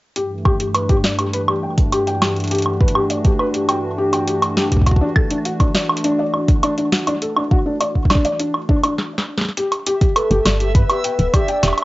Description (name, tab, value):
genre	IDM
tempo	102 BPM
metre	4/4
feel	straight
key	unclear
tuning	A4 = 440 Hz
part	hollow soft pad	sustained chords	0.2-9.0 s	G2 to F#4	-24 LUFS	equal	chorus, vintage 12-bit sampler grit, cassette tape
part	felt-muted upright piano	arpeggios	0.2-11.8 s	D4 to G5	-21 LUFS	left 1 dB	low-pass filter, cassette tape, analog delay
part	booming analog drum machine	drums	0.2-11.8 s	hi-hat, snare drum, woodblock	-20 LUFS	right 1 dB	cassette tape
part	electronic kick drum	drums	0.5-11.5 s	none	-15 LUFS	equal	cassette tape
part	backwards swelling texture	texture	10.0-11.8 s	E5	-29 LUFS	right 6 dB	built-in reverb, cassette tape
part	warbly nostalgic lead	melody	10.2-11.8 s	A4 to D5	-21 LUFS	left 1 dB	chorus, cassette tape
part	woody FM bass	bass	10.3-11.7 s	D1 to G2	-18 LUFS	equal	tube saturation
room	moderate studio reverb, RT60 0.6 s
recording	home recording on cassette, nothing above 7.7 kHz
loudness	-15 LUFS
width	side -19 dB against mid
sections	0.2-9.6 A section; 9.6-11.8 B section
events	drum fill 9.0-9.6; stop 9.0-9.6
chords	0.2 G5; 4.9 D; 9.6 G6